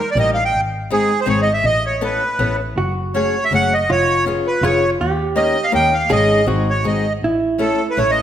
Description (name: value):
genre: musette waltz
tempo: 161 BPM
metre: 3/4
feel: swing 53% on 8ths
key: unclear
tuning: A4 = 440 Hz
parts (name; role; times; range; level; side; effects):
- accordion; melody; 0.0-8.2 s; G#4 to G5; -17 LUFS; right 2 dB; none
- picked steel-string acoustic guitar; accompaniment; 0.2-8.2 s; G3 to A4; -22 LUFS; left 5 dB; none
- dark double bass; bass; 0.2-8.1 s; E#1 to D#2; -23 LUFS; equal; none
- vintage hollow-body jazz guitar; second line; 2.8-8.2 s; E4 to G#4; -22 LUFS; right 1 dB; none
room: wet recital hall reverb, RT60 1.4 s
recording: none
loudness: -15 LUFS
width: side -10 dB against mid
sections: 0.0-8.2 A section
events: none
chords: 0.0 D#; 0.5 G#; 1.6 Aadd9; 2.8 F#madd9; 3.9 C#7/E#; 5.0 D#7; 6.1 G#sus4; 6.5 G#; 7.2 A